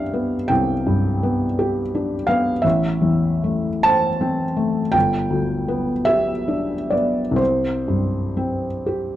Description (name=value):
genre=classical, romantic nocturne for solo piano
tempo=40-58 BPM (dotted quarters)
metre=12/8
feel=rubato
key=unclear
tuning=A4 = 439 Hz
part: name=felt-muted upright piano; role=solo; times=0.0-9.2 s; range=G1 to A5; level=-18 LUFS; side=equal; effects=none
room=moderate large studio reverb, RT60 0.9 s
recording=dark, warm production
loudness=-18 LUFS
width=side -13 dB against mid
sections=0.0-9.2 A section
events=none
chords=0.0 G/C; 2.6 Am; 4.9 G; 7.4 C5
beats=0.50 1.59 | 2.64 3.85 4.95 6.07 | 7.39 8.85